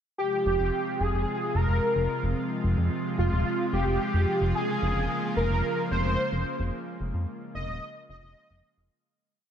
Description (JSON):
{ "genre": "synthwave", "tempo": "110 BPM", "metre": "4/4", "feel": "straight", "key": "F minor", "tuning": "A4 = 440 Hz", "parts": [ { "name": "wide unison lead", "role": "melody", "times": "0.2-8.8 s", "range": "F4 to Eb5", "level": "-29 LUFS", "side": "equal", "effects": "ensemble chorus, vintage 12-bit sampler grit, ping-pong delay" }, { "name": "lush unison pad", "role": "sustained chords", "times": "0.2-8.9 s", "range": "C3 to F4", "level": "-31 LUFS", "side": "equal", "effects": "chorus" }, { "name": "fat analog bass", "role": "bass", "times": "0.5-8.9 s", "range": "Eb1 to F2", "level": "-27 LUFS", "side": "equal", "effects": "none" } ], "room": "moderate lush hall reverb, RT60 2.3 s", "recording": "bright 1980s-style digital production", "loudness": "-25 LUFS", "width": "side -9 dB against mid", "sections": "0.2-8.9 verse", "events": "fade-out 6.0-8.9", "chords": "0.2 Fmadd9; 4.5 Bbm7/F" }